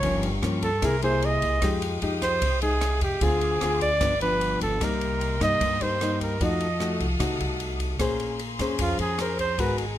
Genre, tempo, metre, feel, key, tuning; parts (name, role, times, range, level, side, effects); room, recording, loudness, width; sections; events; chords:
bossa nova; 151 BPM; 4/4; straight; F minor; A4 = 440 Hz
breathy flugelhorn; melody; 0.0-9.9 s; Eb4 to D#5; -26 LUFS; right 2 dB
nylon-string guitar; accompaniment; 0.0-10.0 s; G2 to C5; -28 LUFS; left 3 dB
clear studio string section; sustained chords; 0.0-10.0 s; E4 to Eb6; -35 LUFS; left 2 dB
upright bass; bass; 0.0-10.0 s; G1 to G2; -30 LUFS; equal
open jazz drum kit; drums; 0.0-9.9 s; kick drum, ride cymbal, rim click; -32 LUFS; equal
little or no reverb; close, detailed microphones; -22 LUFS; side -12 dB against mid
0.0-4.8 A section; 4.8-10.0 A section
flugelhorn solo 0.0-10.0
0.0 Gm7b5; 0.8 C7alt; 1.6 Fm9; 3.2 Dm7b5; 4.0 G7; 4.8 Cm7; 6.4 F7b9; 8.0 Bbm9